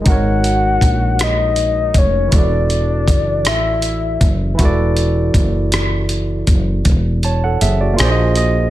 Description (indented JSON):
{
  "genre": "slow six-eight R&B",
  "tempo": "53 BPM (dotted quarters)",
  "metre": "6/8",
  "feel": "straight",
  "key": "unclear",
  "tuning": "A4 = 440 Hz",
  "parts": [
    { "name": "barky tine electric piano", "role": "accompaniment", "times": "0.0-8.7 s", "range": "E3 to A5", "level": "-20 LUFS", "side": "right 2 dB", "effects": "none" },
    { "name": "woody fretless electric bass", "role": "bass", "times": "0.0-8.7 s", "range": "E1 to Bb1", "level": "-17 LUFS", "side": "equal", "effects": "none" },
    { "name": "soft octave-layered synth lead", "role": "melody", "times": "0.1-4.3 s", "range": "Db5 to Gb5", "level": "-19 LUFS", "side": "left 3 dB", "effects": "chorus, ping-pong delay" },
    { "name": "dusty soul sampler-style drum kit", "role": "drums", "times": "0.1-8.5 s", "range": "hi-hat, kick drum, rim click", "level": "-17 LUFS", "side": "equal", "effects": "none" }
  ],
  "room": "digital ambience",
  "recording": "none",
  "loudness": "-13 LUFS",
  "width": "side -14 dB against mid",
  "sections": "0.0-8.7 A section",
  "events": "tine electric piano fill 8.0-8.7",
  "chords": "0.0 Ab9sus4; 2.3 E9sus4; 8.0 Bb9sus4",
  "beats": "| 0.06 1.19 | 2.32 3.46 | 4.59 5.72 | 6.85 7.98"
}